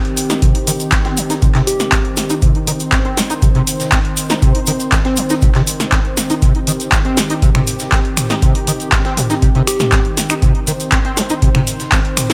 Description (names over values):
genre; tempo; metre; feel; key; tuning
acid house; 120 BPM; 4/4; straight; C minor; A4 = 440 Hz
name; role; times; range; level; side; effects
warm analog pad; sustained chords; 0.0-12.3 s; Eb3 to C5; -25 LUFS; equal; chorus, sidechain pumping
dusty soul sampler-style drum kit; drums; 0.0-12.3 s; hi-hat, snare drum; -32 LUFS; equal; none
punchy analog drum machine; drums; 0.0-12.3 s; finger snaps, handclaps, hi-hat, snare drum, toms; -21 LUFS; equal; none
tube shaker; percussion; 0.2-12.3 s; none; -26 LUFS; equal; none
overdriven acid bass; riff; 0.3-12.3 s; C3 to Eb4; -22 LUFS; equal; distortion, ensemble chorus, sidechain pumping, digital delay
electronic kick drum; drums; 0.4-12.0 s; none; -17 LUFS; equal; none
soft struck synth lead; melody; 1.7-2.4, 9.7-10.4 s; G4; -24 LUFS; equal; chorus, cassette tape, delay
room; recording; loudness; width
light reverb, digital ambience; none; -15 LUFS; mono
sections
0.0-12.3 A section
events
filter sweep on acid bass 0.0-12.3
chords
0.0 Cm